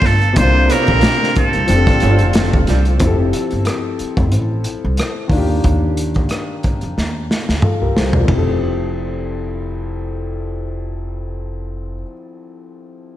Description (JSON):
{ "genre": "R&B, neo-soul", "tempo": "91 BPM", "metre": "4/4", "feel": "swing 55% on 16ths", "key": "F major", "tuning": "A4 = 440 Hz", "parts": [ { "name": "trumpet with straight mute", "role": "melody", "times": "0.0-2.6 s", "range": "A4 to C5", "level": "-18 LUFS", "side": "right 2 dB", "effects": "slapback echo, tape echo" }, { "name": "warm concert grand piano", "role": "accompaniment", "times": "0.0-13.2 s", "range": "Bb2 to D5", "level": "-22 LUFS", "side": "left 3 dB", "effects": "slapback echo" }, { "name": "tonewheel organ", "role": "sustained chords", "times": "0.0-3.0 s", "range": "D3 to A4", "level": "-28 LUFS", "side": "equal", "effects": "none" }, { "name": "upright bass", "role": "bass", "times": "0.0-12.0 s", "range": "E1 to F2", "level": "-18 LUFS", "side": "equal", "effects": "none" }, { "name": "crunchy breakbeat drum kit", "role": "drums", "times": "0.0-8.4 s", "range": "hi-hat, kick drum, ride cymbal, rim click, snare drum, toms", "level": "-18 LUFS", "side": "equal", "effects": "none" }, { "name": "warm horn section", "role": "stabs", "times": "0.4-2.7 s", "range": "D3 to G4", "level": "-27 LUFS", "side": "right 2 dB", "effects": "slapback echo" }, { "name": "nylon-string guitar", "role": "second line", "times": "0.7-2.8 s", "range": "C4 to D5", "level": "-25 LUFS", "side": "right 6 dB", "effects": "slapback echo" } ], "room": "light reverb, small room ambience", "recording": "none", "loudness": "-14 LUFS", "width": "side -13 dB against mid", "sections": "0.0-3.0 A section; 3.0-8.3 B section; 8.3-10.9 C section", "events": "drum fill 7.0-8.3", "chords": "0.4 C9sus4; 1.7 F6; 3.0 Fmaj7; 5.3 Ebmaj7; 8.3 Fmaj7" }